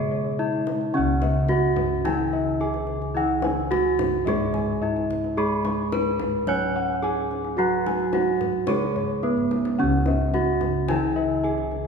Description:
Javanese gamelan; 109 BPM; 4/4; straight; C# slendro; A4 = 440 Hz
gamelan-type bronze metallophone; melody; 0.0-11.9 s; B3-25c to C#5; -25 LUFS; right 1 dB
gamelan-type bronze metallophone; accompaniment; 0.0-11.9 s; C#3 to C#4; -29 LUFS; right 2 dB
gamelan-type bossed gongs; arpeggios; 0.0-11.8 s; B4-25c to C#6; -29 LUFS; left 3 dB
gamelan-type bossed gongs; bass; 0.0-11.9 s; C#2 to B4-25c; -29 LUFS; left 1 dB
kendang; percussion; 0.2-11.9 s; -32 LUFS; left 4 dB
wet concert hall reverb, RT60 2.0 s; recorded in a church or concert hall; -21 LUFS; side -5 dB against mid
0.9-11.9 A section
drum fill 9.4-9.8
0.39 | 0.95 1.50 2.05 2.61 | 3.16 3.71 4.26 4.82 | 5.37 5.92 6.47 7.03 | 7.58 8.13 8.69 9.24 | 9.79 10.34 10.90 11.45

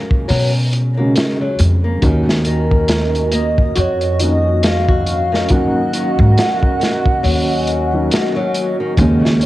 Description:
trip hop; 69 BPM; 4/4; swing 59% on 16ths; Eb minor; A4 = 439 Hz
felt-muted upright piano; accompaniment; 0.0-9.5 s; Db3 to Gb4; -21 LUFS; equal; tremolo, cassette tape
flamenco guitar; arpeggios; 0.0-9.5 s; Eb3 to Gb4; -24 LUFS; left 2 dB; cassette tape, tape echo
crunchy breakbeat drum kit; drums; 0.1-9.5 s; hi-hat, kick drum, snare drum; -18 LUFS; equal; cassette tape
upright bass; bass; 0.3-9.5 s; Eb2 to Cb3; -16 LUFS; equal
warbly tape-like pad; sustained chords; 2.8-9.5 s; Db4 to Eb5; -23 LUFS; equal; chorus, built-in reverb, phaser, vintage 12-bit sampler grit, cassette tape
pure breathy sine lead; melody; 2.5-9.5 s; Bb4 to Gb5; -21 LUFS; right 1 dB; phaser, analog chorus, tape echo
small room ambience; home recording on cassette; -13 LUFS; side -16 dB against mid
0.0-9.5 A section
0.0 Dbsus4; 2.0 Ebm7
0.28 1.15 | 2.02 2.89 3.76 4.63 | 5.50 6.37 7.24 8.11 | 8.98

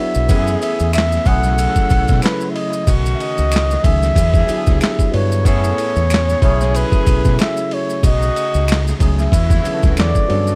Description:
R&B, neo-soul; 93 BPM; 4/4; swing 56% on 16ths; A4 = 440 Hz
breathy flugelhorn; melody; 0.0-10.6 s; B4 to F#5; -23 LUFS; equal; slapback echo
overdriven tine electric piano; accompaniment; 0.0-10.6 s; D3 to B4; -25 LUFS; equal; phaser
maracas and finger snaps; percussion; 0.1-10.6 s; -32 LUFS; equal
deep dub fingered electric bass; bass; 0.2-10.6 s; B1 to B2; -20 LUFS; equal
bright tonewheel organ; sustained chords; 0.3-10.6 s; A2 to G#4; -31 LUFS; equal
warm saxophone section; stabs; 0.3-10.3 s; C#3 to A4; -29 LUFS; equal
boom bap sampler-style drum kit; drums; 0.3-10.5 s; handclaps, kick drum, ride cymbal, snare drum; -20 LUFS; equal
studio ambience; -16 LUFS; mono
0.0-10.6 A section
0.3 F#m11; 1.3 B13sus4; 2.9 B13; 4.2 E9; 5.5 F#m11; 6.4 B13sus4; 8.0 B13; 9.3 E13sus4
| 0.29 0.94 1.58 2.23 | 2.87 3.52 4.16 4.81 | 5.45 6.10 6.74 7.39 | 8.03 8.68 9.32 9.97

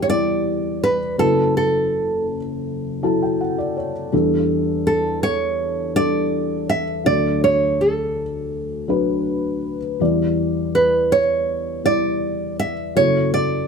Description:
acoustic folk-pop ballad; 82 BPM; 4/4; straight; E dorian; A4 = 440 Hz
nylon-string guitar; melody; 0.0-13.7 s; A4 to E5; -19 LUFS; right 3 dB
felt-muted upright piano; accompaniment; 0.0-13.7 s; F#1 to A5; -21 LUFS; left 2 dB
wet studio reverb, RT60 0.8 s; -18 LUFS; side -6 dB against mid
0.0-13.7 A section
0.0 Em7; 1.2 F#m7; 4.1 A7sus4/E; 7.1 D; 10.0 Em7; 13.0 F#m7
0.46 | 1.20 1.93 2.66 3.40 | 4.13 4.86 5.59 6.32 | 7.05 7.79 8.52 9.26 | 10.00 10.74 11.48 12.22 | 12.96

